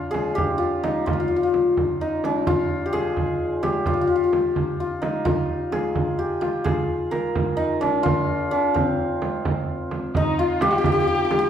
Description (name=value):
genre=Persian modal ensemble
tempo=86 BPM (dotted quarters)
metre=6/8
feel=straight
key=unclear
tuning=A4 = 443 Hz
part: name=santur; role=melody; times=0.0-11.5 s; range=C4 to Bb4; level=-21 LUFS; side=left 1 dB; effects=none
part: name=frame drum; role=percussion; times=0.1-11.4 s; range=none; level=-26 LUFS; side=right 3 dB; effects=none
part: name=warm kamancheh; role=second line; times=10.2-11.5 s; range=Eb4 to G4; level=-25 LUFS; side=left 3 dB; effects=none
room=wet large studio reverb, RT60 1.2 s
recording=band playing live in one room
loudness=-20 LUFS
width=side -9 dB against mid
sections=0.0-10.1 A section; 10.1-11.5 B section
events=none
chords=none